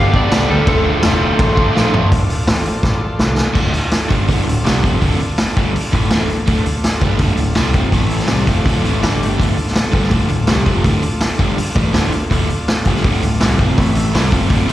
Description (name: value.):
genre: garage rock duo or trio.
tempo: 165 BPM.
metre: 4/4.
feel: straight.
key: D minor.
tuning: A4 = 439 Hz.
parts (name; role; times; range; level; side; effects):
electric slide guitar; melody; 0.0-0.8 s; A4 to F5; -19 LUFS; equal; slapback echo.
combo organ; sustained chords; 0.0-14.7 s; A3 to E5; -27 LUFS; left 1 dB; none.
crunchy overdriven guitar; riff; 0.0-14.7 s; D2 to G4; -18 LUFS; equal; slapback echo.
growling picked electric bass; bass; 0.0-14.7 s; D1 to D2; -18 LUFS; equal; overdrive, tube saturation.
vintage drum kit; drums; 0.1-14.7 s; crash cymbal, hi-hat, kick drum, snare drum, toms; -16 LUFS; equal; none.
room: light reverb.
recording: live gig heard through the venue's PA, recital hall reverb.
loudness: -13 LUFS.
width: side -14 dB against mid.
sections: 0.0-2.1 A section; 2.1-3.6 B section; 3.6-14.7 C section.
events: drum fill 1.7-2.1, 2.8-3.6.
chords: 0.0 G; 0.7 Dm; 7.9 A5; 8.3 Dm; 9.0 G5; 9.4 Dm; 13.8 A5; 14.1 Dm.